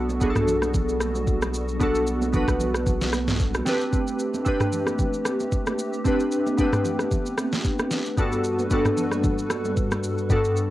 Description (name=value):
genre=amapiano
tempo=113 BPM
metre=4/4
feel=swing 55% on 16ths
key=unclear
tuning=A4 = 440 Hz
part: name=glassy digital keys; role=accompaniment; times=0.0-10.7 s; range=G2 to B4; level=-24 LUFS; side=equal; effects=chorus, tremolo
part: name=hollow soft pad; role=sustained chords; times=0.0-10.7 s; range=G3 to B4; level=-32 LUFS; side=equal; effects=ensemble chorus, sidechain pumping
part: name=punchy sub bass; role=bass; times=0.0-3.6 s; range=B1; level=-29 LUFS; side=equal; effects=none
part: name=smooth R&B drum kit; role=drums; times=0.1-10.7 s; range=kick drum, rim click, shaker, snare drum, toms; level=-26 LUFS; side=equal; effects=cassette tape
part: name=congas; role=percussion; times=0.1-10.0 s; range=none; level=-34 LUFS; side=right 4 dB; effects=none
room=moderate small room reverb, RT60 0.5 s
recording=home recording on cassette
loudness=-21 LUFS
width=side -15 dB against mid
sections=0.0-10.7 A section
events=none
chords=0.0 Gmaj9/B; 3.7 Am11; 8.2 Gmaj9